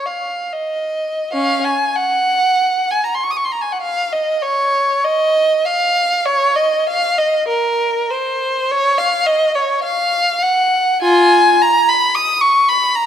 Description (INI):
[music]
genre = classical, free, expressive piece for unaccompanied violin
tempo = 31-58 BPM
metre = 4/4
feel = rubato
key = unclear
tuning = A4 = 441 Hz
[part]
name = warm violin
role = solo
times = 0.0-13.1 s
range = Db4 to Eb6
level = -13 LUFS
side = equal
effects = none
[sound]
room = moderate concert hall reverb, RT60 1.9 s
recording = none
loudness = -13 LUFS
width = side -9 dB against mid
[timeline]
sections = 0.0-1.3 A section; 1.3-13.1 A section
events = none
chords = none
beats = | 1.33 2.59 3.82 5.05 | 6.27 7.50 8.70 9.83 | 11.02 12.15